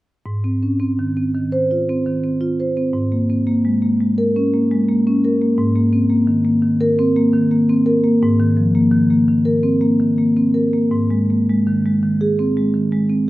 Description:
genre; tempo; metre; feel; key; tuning
classical, contemporary piece for solo marimba; 112 BPM; 5/4; rubato; Ab major; A4 = 439 Hz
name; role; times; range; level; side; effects
marimba with soft mallets; solo; 0.3-13.3 s; Ab2 to C5; -14 LUFS; equal; none
room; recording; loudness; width
moderate recital hall reverb, RT60 1.5 s; none; -14 LUFS; side -17 dB against mid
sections
0.3-10.9 A section; 10.9-13.3 B section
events
none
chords
0.3 Ab6; 3.0 Bbm7/Ab; 5.6 Abadd9; 10.9 Ab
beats
| 0.26 0.80 1.35 1.89 2.43 | 2.96 3.49 4.01 4.54 5.06 | 5.58 6.11 6.63 7.16 7.69 | 8.22 8.75 9.29 9.82 10.37 | 10.94 11.49 12.03 12.57 13.11

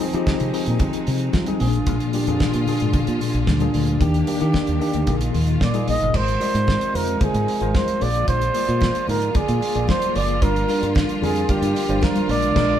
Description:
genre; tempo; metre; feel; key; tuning
disco; 112 BPM; 4/4; straight; unclear; A4 = 445 Hz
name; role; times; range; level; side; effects
mellow tine electric piano; accompaniment; 0.0-12.8 s; Bb2 to F5; -23 LUFS; left 2 dB; fast stereo tremolo
clear studio string section; sustained chords; 0.0-12.8 s; C3 to G4; -31 LUFS; right 2 dB; none
damped 70s drum kit; drums; 0.0-12.7 s; crash cymbal, hi-hat, kick drum, snare drum; -24 LUFS; equal; none
congas; percussion; 0.0-12.3 s; none; -31 LUFS; left 1 dB; none
modern bright fingered electric bass; bass; 0.1-12.7 s; Gb1 to F3; -23 LUFS; equal; none
breathy flugelhorn; melody; 5.6-12.8 s; G4 to Eb5; -23 LUFS; right 3 dB; none
room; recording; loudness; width
moderate studio reverb, RT60 0.7 s; band playing live in one room, faint mains hum; -18 LUFS; side -10 dB against mid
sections
0.0-6.1 A section; 6.1-12.8 B section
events
band accent 12.6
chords
0.0 Fm7; 1.6 Bb7; 4.0 Ebmaj7; 5.1 Bb7sus4; 6.1 Ab69; 8.0 Bb7; 10.4 Gm7; 12.3 Bb7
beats
0.27 0.80 1.33 | 1.87 2.40 2.94 3.47 | 4.01 4.54 5.08 5.61 | 6.14 6.68 7.21 7.75 | 8.28 8.82 9.35 9.89 | 10.42 10.96 11.49 12.03 | 12.56

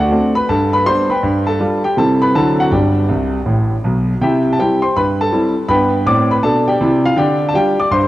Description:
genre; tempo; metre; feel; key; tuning
jazz, stride piano; 162 BPM; 4/4; swing 64% on 8ths; G major, C major from 4.2 s; A4 = 442 Hz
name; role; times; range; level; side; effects
clear concert grand piano; solo; 0.0-8.1 s; G1 to D6; -12 LUFS; equal; cassette tape
room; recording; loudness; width
moderate lush hall reverb, RT60 3.4 s; home recording on cassette; -12 LUFS; side -15 dB against mid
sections
0.0-4.2 A section; 4.2-8.1 B section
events
grand piano fill 3.1-4.2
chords
0.5 G; 1.2 G7; 2.0 C; 2.3 D9; 2.7 G; 4.2 C; 5.7 G7; 7.2 G7(no3)/D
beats
0.11 0.48 0.86 | 1.23 1.60 1.97 2.34 | 2.71 3.09 3.46 3.83 | 4.20 4.57 4.94 5.31 | 5.68 6.05 6.42 6.79 | 7.16 7.53 7.90

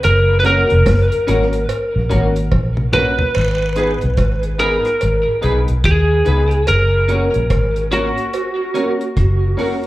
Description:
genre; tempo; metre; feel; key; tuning
roots reggae; 72 BPM; 4/4; swing 61% on 16ths; G# minor; A4 = 440 Hz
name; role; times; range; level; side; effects
lightly driven lead guitar; melody; 0.0-9.5 s; F#4 to B4; -18 LUFS; equal; tape echo, slapback echo
vintage muted fingered electric bass; bass; 0.0-9.5 s; E#1 to D#2; -16 LUFS; equal; none
deep reggae drum kit; drums; 0.0-9.9 s; crash cymbal, hi-hat, kick drum, rim click, snare drum, toms; -22 LUFS; equal; tape echo
cowbell and jawbone-type rattle; percussion; 0.0-8.6 s; none; -27 LUFS; right 4 dB; slapback echo
clean electric guitar; accompaniment; 0.4-9.7 s; C#4 to B4; -25 LUFS; right 3 dB; analog chorus, tape echo, slapback echo
warm upright piano; stabs; 0.4-9.8 s; A#3 to B4; -24 LUFS; left 4 dB; slapback echo
room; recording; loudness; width
small room ambience; live gig heard through the venue's PA, club reverb; -13 LUFS; side -16 dB against mid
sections
0.0-3.3 A section; 3.3-9.9 B section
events
drum fill 2.5-3.3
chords
0.0 F#; 3.3 G#m; 6.7 F#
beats
| 0.03 0.86 1.69 2.52 | 3.35 4.18 5.01 5.84 | 6.67 7.50 8.33 9.16

